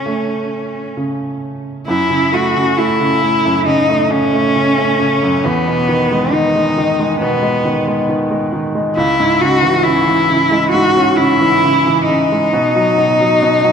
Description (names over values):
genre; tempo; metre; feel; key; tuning
pop; 68 BPM; 4/4; straight; unclear; A4 = 441 Hz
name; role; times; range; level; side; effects
rich cello; melody; 0.0-13.7 s; B3 to F#4; -14 LUFS; left 1 dB; none
clear baby grand piano; accompaniment; 0.0-13.7 s; C#2 to C#4; -16 LUFS; right 2 dB; none
room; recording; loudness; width
wet plate reverb, RT60 2.5 s; dreamy mix soaked in reverb; -12 LUFS; side -7 dB against mid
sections
0.0-1.9 A section; 1.9-13.7 B section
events
none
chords
0.0 A/C#; 1.9 F#m7; 5.4 Emaj7; 9.0 C#m; 12.5 B